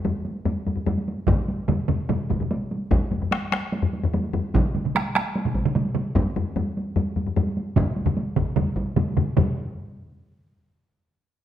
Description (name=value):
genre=japanese traditional, taiko drum ensemble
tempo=148 BPM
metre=4/4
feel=straight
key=none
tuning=none
part: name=solo taiko drums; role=percussion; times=0.0-9.6 s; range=none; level=-28 LUFS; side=right 1 dB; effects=none
part: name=taiko ensemble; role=percussion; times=0.0-9.7 s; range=none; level=-26 LUFS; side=left 4 dB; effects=none
part: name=taiko ensemble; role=percussion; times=1.3-9.7 s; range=none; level=-25 LUFS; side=right 4 dB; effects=none
part: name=taiko ensemble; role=percussion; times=1.3-9.6 s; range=none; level=-25 LUFS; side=equal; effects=none
room=wet recital hall reverb, RT60 1.3 s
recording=none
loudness=-22 LUFS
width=side -11 dB against mid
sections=0.0-9.4 A section; 9.4-11.4 B section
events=speeding up 0.0-11.4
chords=none